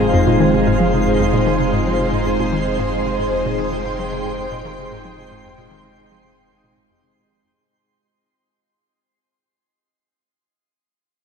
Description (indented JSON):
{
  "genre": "ambient, sequencer-driven space music",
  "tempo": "113 BPM",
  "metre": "4/4",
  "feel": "straight",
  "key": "F minor",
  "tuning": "A4 = 440 Hz",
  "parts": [
    { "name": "string machine, full ensemble", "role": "sustained chords", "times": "0.0-7.5 s", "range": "Ab3 to G5", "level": "-19 LUFS", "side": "equal", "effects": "ensemble chorus" },
    { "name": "Celtic harp", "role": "arpeggios", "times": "0.0-10.0 s", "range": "Eb4 to F5", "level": "-26 LUFS", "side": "left 4 dB", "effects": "auto-pan, ping-pong delay" },
    { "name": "hollow square pluck", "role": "riff", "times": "0.0-7.6 s", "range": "F2 to F3", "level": "-22 LUFS", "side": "equal", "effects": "chorus, ping-pong delay" },
    { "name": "warm sub bass", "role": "bass", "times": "0.0-7.5 s", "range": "F1", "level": "-27 LUFS", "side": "equal", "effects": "none" },
    { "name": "twinkling granular texture", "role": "texture", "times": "0.0-7.6 s", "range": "C6", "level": "-31 LUFS", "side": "right 4 dB", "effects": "built-in reverb" }
  ],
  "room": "wet shimmer reverb, RT60 6.9 s",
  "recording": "dark, warm production",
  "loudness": "-16 LUFS",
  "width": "side -6 dB against mid",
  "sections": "0.0-7.6 A section",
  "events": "fade-out on synth arpeggio sound 0.0-7.6; fade-out on harp 0.0-7.6; fade-out on sub bass 0.0-7.6; fade-out 0.0-7.6",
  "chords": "0.0 Fm7",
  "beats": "0.14 0.67 | 1.20 1.73 2.26 2.79 | 3.32 3.85 4.38 4.92 | 5.45 5.98 6.51 7.04"
}